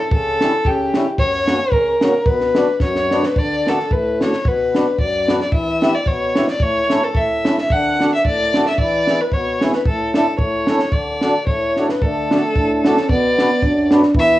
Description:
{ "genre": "alpine folk, alpine dance band", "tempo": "112 BPM", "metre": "2/4", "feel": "swing 55% on 8ths, rubato", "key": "B minor, D major from 3.4 s", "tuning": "A4 = 440 Hz", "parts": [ { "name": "dark fiddle", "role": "melody", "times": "0.0-14.4 s", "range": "G4 to F#5", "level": "-18 LUFS", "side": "left 1 dB", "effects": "plate reverb" }, { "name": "mellow accordion", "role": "accompaniment", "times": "0.1-14.4 s", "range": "F#2 to B4", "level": "-20 LUFS", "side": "left 1 dB", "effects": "none" }, { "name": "compact cocktail drum kit", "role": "drums", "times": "0.1-14.3 s", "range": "kick drum, snare drum", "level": "-20 LUFS", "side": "equal", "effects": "none" }, { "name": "warm euphonium", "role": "second line", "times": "12.0-14.4 s", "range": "A3 to D4", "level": "-18 LUFS", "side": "right 2 dB", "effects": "none" } ], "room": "wet studio reverb, RT60 0.6 s", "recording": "worn, warbling old tape, cassette tape, warbly pitch drift, small room ambience", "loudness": "-15 LUFS", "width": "side -15 dB against mid", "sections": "0.0-3.4 A section; 3.4-12.0 B section; 12.0-14.4 B section", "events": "drum fill 2.8-3.4, 11.7", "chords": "0.1 C#dim; 1.2 F#; 2.3 Bm; 3.4 D; 4.5 Bm; 5.5 Em; 6.6 A; 7.7 D; 8.8 E; 9.9 Asus4; 10.4 A; 10.9 D; 13.1 Bm" }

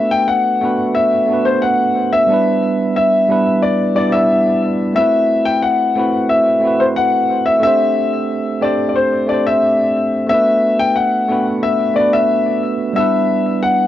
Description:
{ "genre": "chillout", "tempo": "90 BPM", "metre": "4/4", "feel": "straight", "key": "unclear", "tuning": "A4 = 440 Hz", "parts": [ { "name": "warm concert grand piano", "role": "melody", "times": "0.0-13.9 s", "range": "C5 to G5", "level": "-14 LUFS", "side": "left 2 dB", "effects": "cassette tape, analog delay" }, { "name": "tine electric piano", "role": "accompaniment", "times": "0.0-13.9 s", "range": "G3 to E5", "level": "-17 LUFS", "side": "right 3 dB", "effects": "auto-pan, low-pass filter" } ], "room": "wet booth ambience, RT60 0.2 s", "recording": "home recording on cassette", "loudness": "-13 LUFS", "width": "side -12 dB against mid", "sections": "0.0-13.9 A section", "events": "none", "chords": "0.0 Bm7; 2.3 Em7; 5.0 Am69; 7.6 D7sus4; 10.3 Bm7; 13.0 Em7" }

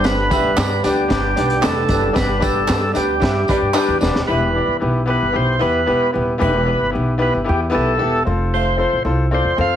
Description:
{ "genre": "uptempo 1960s-style soul", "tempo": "113 BPM", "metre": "4/4", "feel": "straight", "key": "unclear", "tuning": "A4 = 440 Hz", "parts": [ { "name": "overdriven tonewheel organ", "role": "melody", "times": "0.0-9.8 s", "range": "G4 to F5", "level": "-20 LUFS", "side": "right 1 dB", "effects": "slow rotary speaker" }, { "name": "vibraphone with soft mallets", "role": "second line", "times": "0.0-4.0 s", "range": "G4 to B4", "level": "-29 LUFS", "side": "right 6 dB", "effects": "none" }, { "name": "bright grand piano", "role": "accompaniment", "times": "0.0-9.8 s", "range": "G2 to E5", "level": "-20 LUFS", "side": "left 2 dB", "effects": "none" }, { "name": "mellow brass ensemble", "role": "sustained chords", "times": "0.0-4.3 s", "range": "D3 to D4", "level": "-29 LUFS", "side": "right 1 dB", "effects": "none" }, { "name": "upright bass", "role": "bass", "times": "0.0-9.8 s", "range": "Eb1 to G2", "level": "-21 LUFS", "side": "equal", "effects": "none" }, { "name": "crunchy breakbeat drum kit", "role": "drums", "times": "0.0-4.3 s", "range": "hi-hat, kick drum, snare drum", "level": "-22 LUFS", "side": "equal", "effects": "none" }, { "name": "tambourine and handclaps", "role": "percussion", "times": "0.0-4.1 s", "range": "none", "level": "-28 LUFS", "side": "right 4 dB", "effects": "none" }, { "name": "warm horn section", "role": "second line", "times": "3.2-8.9 s", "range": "G3 to C5", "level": "-25 LUFS", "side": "left 1 dB", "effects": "none" } ], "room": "light reverb", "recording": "heavily compressed radio sound", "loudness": "-15 LUFS", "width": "side -10 dB against mid", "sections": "0.0-4.3 A section; 4.3-9.8 B section", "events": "band accent 2.2-4.3; drum fill 3.8-4.3", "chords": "0.0 G; 4.3 Em; 8.3 F" }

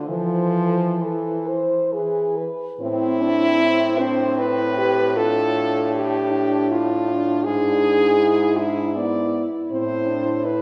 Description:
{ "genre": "classical, lyrical piece for horn quartet", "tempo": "64-82 BPM", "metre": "3/4", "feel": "rubato", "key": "A minor", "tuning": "A4 = 440 Hz", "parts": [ { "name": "clear French horn", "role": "melody", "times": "0.0-10.6 s", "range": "E4 to D5", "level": "-24 LUFS", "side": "equal", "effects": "none" }, { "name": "mellow French horn", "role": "second line", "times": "0.0-10.6 s", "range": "B3 to C5", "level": "-27 LUFS", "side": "equal", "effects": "none" }, { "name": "warm French horn", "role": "bass", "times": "0.0-10.6 s", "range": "G#2 to E3", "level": "-29 LUFS", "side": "equal", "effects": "none" }, { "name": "warm French horn", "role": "accompaniment", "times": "0.1-10.6 s", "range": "E3 to E4", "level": "-27 LUFS", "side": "equal", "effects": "none" } ], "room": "wet scoring stage reverb, RT60 1.7 s", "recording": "heard from further back in the room", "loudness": "-21 LUFS", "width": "mono", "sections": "0.0-2.8 A section; 2.8-10.6 B section", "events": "none", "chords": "0.1 Am/E; 1.9 E; 2.8 Am; 5.2 Fmaj13/A; 7.5 E7/G#; 9.7 Am" }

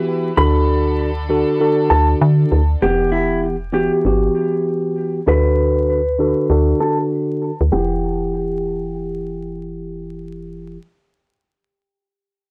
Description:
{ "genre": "hip hop", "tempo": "98 BPM", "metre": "4/4", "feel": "swing 62% on 16ths", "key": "E minor", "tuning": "A4 = 445 Hz", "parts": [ { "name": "mellow tine electric piano", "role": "accompaniment", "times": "0.0-10.8 s", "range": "D3 to F#5", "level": "-21 LUFS", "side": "equal", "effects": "cassette tape, high-pass filter, low-pass filter" }, { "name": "rich studio string section", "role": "sustained chords", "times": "0.0-2.8 s", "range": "D3 to B4", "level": "-32 LUFS", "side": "equal", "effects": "high-pass filter, low-pass filter" }, { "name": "mellow electric guitar", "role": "melody", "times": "0.4-9.5 s", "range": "E4 to B5", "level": "-24 LUFS", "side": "equal", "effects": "high-pass filter, low-pass filter, tape echo" }, { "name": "woody FM bass", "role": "bass", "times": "0.4-10.8 s", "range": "E1 to D3", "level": "-21 LUFS", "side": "equal", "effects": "tube saturation" } ], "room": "little or no reverb", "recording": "dry, gritty hardware recording, transformer saturation, vinyl crackle", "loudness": "-17 LUFS", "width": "mono", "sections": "0.0-2.8 A section; 2.8-7.7 B section; 7.7-10.2 C section", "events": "filter sweep 2.8-7.7", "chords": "0.4 D; 2.8 Emadd9; 5.3 D; 7.7 Emadd9" }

